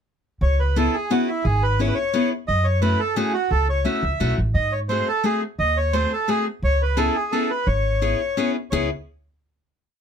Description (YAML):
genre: musette waltz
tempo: 173 BPM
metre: 3/4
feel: straight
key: C# minor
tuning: A4 = 439 Hz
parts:
  - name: bandoneon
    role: melody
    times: 0.4-8.9 s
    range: E4 to E5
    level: -23 LUFS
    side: right 2 dB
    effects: none
  - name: upright bass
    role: bass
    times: 0.4-8.9 s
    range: G#1 to G#2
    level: -21 LUFS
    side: equal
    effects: none
  - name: picked steel-string acoustic guitar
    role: accompaniment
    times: 0.8-8.9 s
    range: A3 to G#4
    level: -23 LUFS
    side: left 4 dB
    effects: none
room: little or no reverb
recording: close, detailed microphones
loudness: -19 LUFS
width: side -7 dB against mid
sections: 0.4-8.7 A section; 8.7-9.8 final chord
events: none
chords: 0.4 C#m7; 2.5 F#m7; 4.5 G#7b9; 6.6 C#m7